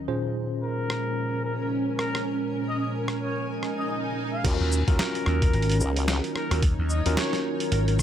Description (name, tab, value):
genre	glitch hop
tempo	110 BPM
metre	4/4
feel	swing 58% on 16ths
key	unclear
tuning	A4 = 440 Hz
part	warbly tape-like pad	sustained chords	0.0-8.0 s	Bb2 to Db5	-34 LUFS	equal	chorus, built-in reverb, sidechain pumping
part	tine electric piano	stabs	0.0-8.0 s	Bb2 to C5	-31 LUFS	equal	medium stereo tremolo, sidechain pumping
part	granular cloud pad	texture	0.0-8.0 s	Db4 to Ab5	-33 LUFS	right 2 dB	built-in reverb, sidechain pumping
part	breathy trumpet	melody	0.6-7.9 s	Bb4 to F5	-33 LUFS	left 1 dB	ping-pong delay
part	boom bap sampler-style drum kit	drums	0.9-8.0 s	crash cymbal, hi-hat, rim click, shaker, snare drum	-30 LUFS	equal	none
part	swell	sound effects	3.5-4.4 s	none	-35 LUFS	right 1 dB	none
part	formant-sweep wobble bass	bass	4.4-6.2 s	Db2 to Eb2	-26 LUFS	equal	chorus, tube saturation
part	electronic kick drum	drums	4.4-8.0 s	none	-23 LUFS	equal	none
part	vintage slap bass	bass	4.6-8.0 s	Ab1 to Eb2	-24 LUFS	equal	none
room	moderate studio reverb, RT60 0.6 s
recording	none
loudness	-24 LUFS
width	side -10 dB against mid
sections	0.0-4.4 A section; 4.4-8.0 B section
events	filter sweep on tine electric piano 0.0-4.4; swell 3.5-4.4; drop 4.4-8.0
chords	0.1 Bbm7; 4.4 Ebm7